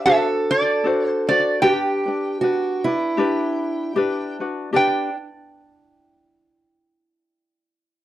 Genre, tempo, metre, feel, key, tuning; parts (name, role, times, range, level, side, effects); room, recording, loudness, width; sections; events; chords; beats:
Hawaiian; 77 BPM; 4/4; swing 57% on 8ths; G major; A4 = 440 Hz
lap resonator guitar; melody; 0.0-5.2 s; D5 to G5; -19 LUFS; right 2 dB; slapback echo
fingerpicked acoustic archtop guitar; second line; 0.0-5.2 s; D4 to A4; -23 LUFS; right 2 dB; slapback echo
ukulele; accompaniment; 0.0-5.6 s; D4 to C5; -23 LUFS; left 4 dB
light reverb; dry, close 1970s-style studio recording; -18 LUFS; side -14 dB against mid
0.0-4.7 A section; 4.7-7.8 B section
0.1 D7; 1.6 G; 4.7 N.C.
0.06 0.84 | 1.62 2.40 3.18 3.96 | 4.74 5.51